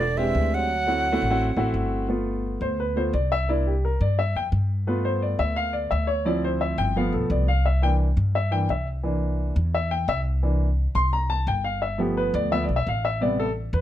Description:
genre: jazz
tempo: 173 BPM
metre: 4/4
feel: straight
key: G mixolydian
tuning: A4 = 441 Hz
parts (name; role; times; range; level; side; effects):
- breathy bright jazz flute; melody; 0.0-1.8 s; D5 to F#5; -25 LUFS; right 2 dB; none
- trombone with cup mute; second line; 0.0-1.7 s; D3 to F#3; -32 LUFS; right 6 dB; none
- upright bass; bass; 0.0-13.8 s; E1 to G2; -24 LUFS; equal; none
- warm upright piano; accompaniment; 0.2-13.8 s; C3 to C6; -25 LUFS; left 1 dB; none
room: little or no reverb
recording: close, detailed microphones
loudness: -21 LUFS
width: side -12 dB against mid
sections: 0.0-2.1 A section; 2.1-13.8 B section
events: upright piano solo 2.1-13.8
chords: 0.0 E7alt; 0.7 D7; 2.1 G7; 3.5 C7; 4.9 G7; 6.3 Dm7; 7.0 G7; 7.7 C7; 11.8 G7; 13.2 Am7

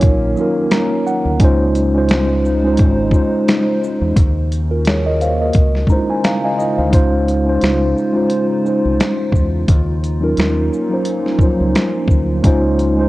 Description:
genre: lo-fi hip hop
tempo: 87 BPM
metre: 4/4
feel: swing 55% on 16ths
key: Db major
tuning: A4 = 440 Hz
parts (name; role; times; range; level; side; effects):
- mellow tine electric piano; accompaniment; 0.0-13.1 s; F3 to Bb5; -16 LUFS; equal; medium stereo tremolo, low-pass filter
- warbly tape-like pad; sustained chords; 0.0-13.1 s; Db3 to C5; -25 LUFS; left 2 dB; chorus, built-in reverb, low-pass filter
- deep dub fingered electric bass; bass; 0.0-13.1 s; Ab1 to Fb2; -18 LUFS; equal; none
- boom bap sampler-style drum kit; drums; 0.0-13.0 s; hi-hat, kick drum, shaker, snare drum; -15 LUFS; equal; none
room: light reverb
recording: worn, warbling old tape, cassette tape, warbly pitch drift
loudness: -13 LUFS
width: side -18 dB against mid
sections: 0.0-6.9 A section; 6.9-13.1 B section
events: none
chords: 0.0 Ebm7; 1.4 Dbmaj9; 4.2 Ebm7; 5.5 Dbmaj9; 9.7 Ebm7; 12.4 Dbmaj9

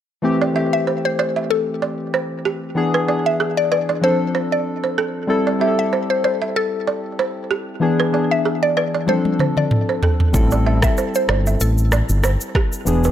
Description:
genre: afrobeats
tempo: 95 BPM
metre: 4/4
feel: swing 55% on 16ths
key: A minor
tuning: A4 = 440 Hz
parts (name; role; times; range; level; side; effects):
- soft electric-piano-like synth keys; accompaniment; 0.2-13.1 s; E3 to A4; -21 LUFS; left 2 dB; chorus
- balafon; riff; 0.4-13.1 s; G4 to E5; -23 LUFS; right 6 dB; digital delay
- mallet-like synth pluck; melody; 0.7-12.1 s; A4 to E5; -21 LUFS; left 1 dB; chorus, phaser, digital delay
- afro-pop drum kit; drums; 9.1-13.1 s; kick drum, rim click, shaker, toms; -19 LUFS; equal; none
- fingered electric bass; bass; 10.3-13.1 s; E1 to A1; -17 LUFS; equal; none
room: digital ambience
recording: none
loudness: -16 LUFS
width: side -10 dB against mid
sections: 0.2-13.1 A section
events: drum fill 9.1-10.3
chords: 0.2 Am7; 2.8 E7; 4.0 Dm7; 5.3 Am7; 7.8 E7; 9.1 Dm7; 10.3 Am7

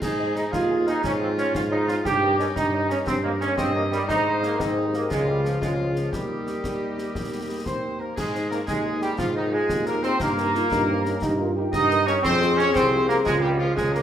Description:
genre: military-style march for wind band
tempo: 118 BPM (dotted quarters)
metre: 6/8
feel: straight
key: Ab major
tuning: A4 = 441 Hz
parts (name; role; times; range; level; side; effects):
- clear woodwind section; second line; 0.0-14.0 s; Eb4 to Eb5; -32 LUFS; left 1 dB; none
- warm trombone section; sustained chords; 0.0-14.0 s; Eb3 to Ab4; -25 LUFS; right 2 dB; none
- mellow tuba; bass; 0.0-14.0 s; C2 to Ab2; -26 LUFS; right 1 dB; none
- concert snare drum, clash cymbals and concert bass drum; drums; 0.0-14.0 s; none; -33 LUFS; left 1 dB; none
- mellow trumpet section; melody; 0.2-14.0 s; Eb4 to Ab5; -34 LUFS; left 2 dB; none
- mellow French horn section; accompaniment; 0.2-14.0 s; Eb4 to Eb5; -33 LUFS; left 4 dB; none
- mellow hollow large flute ensemble; second line; 7.7-14.0 s; Eb5 to Eb6; -30 LUFS; equal; none
- warm euphonium; second line; 8.7-14.0 s; C4 to Ab4; -28 LUFS; left 1 dB; none
room: wet recital hall reverb, RT60 1.5 s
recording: recorded in a church or concert hall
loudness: -21 LUFS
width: side -10 dB against mid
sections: 0.0-8.2 A section; 8.2-14.0 B section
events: none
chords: 0.0 Ab; 1.0 Db/Ab; 2.1 Eb7/G; 4.1 Ab; 5.1 Db; 6.1 Eb; 8.2 Ab; 10.2 Eb/G; 12.2 Fm; 13.3 Bbm7/Db

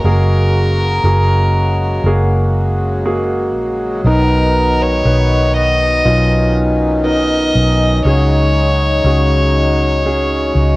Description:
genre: pop ballad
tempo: 60 BPM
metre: 4/4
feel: straight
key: F# major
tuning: A4 = 441 Hz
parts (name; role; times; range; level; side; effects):
- warm violin; melody; 0.0-10.8 s; A#4 to D#5; -17 LUFS; left 1 dB; cassette tape
- warm concert grand piano; accompaniment; 0.0-10.8 s; B2 to B4; -20 LUFS; right 1 dB; cassette tape
- hand-pumped harmonium; sustained chords; 0.0-10.8 s; C#3 to F#4; -19 LUFS; left 1 dB; cassette tape
- vintage muted fingered electric bass; bass; 0.0-10.8 s; F#1 to C#2; -14 LUFS; equal; none
room: moderate spring reverb, RT60 2.5 s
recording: home recording on cassette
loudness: -11 LUFS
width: side -20 dB against mid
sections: 0.0-10.8 A section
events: grand piano fill 10.6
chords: 0.0 F#add9; 4.1 Bmaj7; 8.1 C#sus4

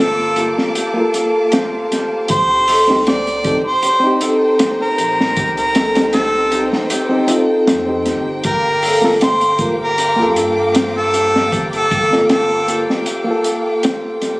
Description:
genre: trip hop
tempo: 78 BPM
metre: 4/4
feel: swing 54% on 16ths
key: G minor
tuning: A4 = 438 Hz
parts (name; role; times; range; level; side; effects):
- warm harmonica; melody; 0.0-12.8 s; A4 to D5; -17 LUFS; equal; tape echo
- reed electric piano; accompaniment; 0.0-14.4 s; Bb3 to Bb4; -20 LUFS; equal; fast tremolo, harmonic tremolo, tape echo
- rich chamber violin section; sustained chords; 0.0-14.4 s; Bb3 to D6; -25 LUFS; equal; none
- concert harp; arpeggios; 0.0-14.4 s; G4 to C5; -19 LUFS; equal; tape echo
- warm sub bass; bass; 0.0-12.8 s; G1 to G2; -30 LUFS; equal; tube saturation
- crunchy breakbeat drum kit; drums; 0.4-14.4 s; hi-hat, kick drum, snare drum; -18 LUFS; equal; none
room: light reverb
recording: recorded on a phone in the room, club reverb, vinyl crackle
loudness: -13 LUFS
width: side -22 dB against mid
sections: 0.0-14.4 A section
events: fade-out 12.5-14.4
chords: 0.0 Gm7; 2.3 Cm; 8.4 Gm7

